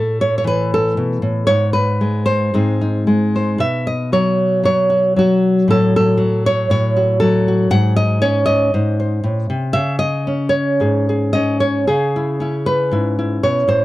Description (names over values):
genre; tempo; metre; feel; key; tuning
folk, solo fingerstyle acoustic guitar; 116 BPM; 4/4; rubato; C# minor; A4 = 444 Hz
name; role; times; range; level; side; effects
nylon-string guitar; solo; 0.0-13.8 s; G#2 to F#5; -14 LUFS; equal; none
room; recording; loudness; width
little or no reverb; dry, close 1970s-style studio recording; -14 LUFS; side -16 dB against mid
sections
0.0-11.9 A section; 11.9-13.8 B section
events
none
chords
0.0 Asus2; 1.5 N.C.; 2.5 G#; 3.6 Badd9; 5.7 F#m/A; 7.7 G#7sus4; 8.7 G#; 9.8 C#sus2; 11.9 C#m7